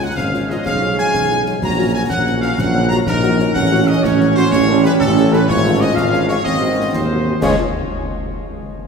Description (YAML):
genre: military-style march for wind band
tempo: 124 BPM (dotted quarters)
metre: 6/8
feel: straight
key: Db major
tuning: A4 = 442 Hz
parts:
  - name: warm trumpet section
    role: melody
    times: 0.0-7.6 s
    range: A4 to Bb5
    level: -20 LUFS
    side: left 1 dB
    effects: none
  - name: mellow French horn section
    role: accompaniment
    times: 0.0-7.6 s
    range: Gb3 to A4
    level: -25 LUFS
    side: left 4 dB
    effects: none
  - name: warm trombone section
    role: sustained chords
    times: 0.0-7.5 s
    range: F3 to Db4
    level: -26 LUFS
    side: right 1 dB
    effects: none
  - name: mellow tuba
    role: bass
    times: 0.0-7.6 s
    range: Ab1 to Eb2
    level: -18 LUFS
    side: right 1 dB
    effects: none
  - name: mellow euphonium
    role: second line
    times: 0.2-7.0 s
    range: C4 to Ab4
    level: -20 LUFS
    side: right 4 dB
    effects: none
  - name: concert snare drum, concert bass drum and clash cymbals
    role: drums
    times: 0.2-7.6 s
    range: none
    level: -26 LUFS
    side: left 2 dB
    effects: none
room: wet cathedral reverb, RT60 4.6 s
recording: recorded in a church or concert hall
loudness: -13 LUFS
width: side -5 dB against mid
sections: 0.0-7.4 A section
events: none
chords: 0.0 Db; 0.7 Db7/Cb; 1.6 Gb/Bb; 3.6 Gbm/A; 4.5 A7; 5.5 Db/Ab; 6.5 Ab7; 7.4 Db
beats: 0.17 | 0.66 1.14 | 1.62 2.11 | 2.59 3.08 | 3.56 4.04 | 4.52 5.01 | 5.49 5.97 | 6.46 6.94 | 7.42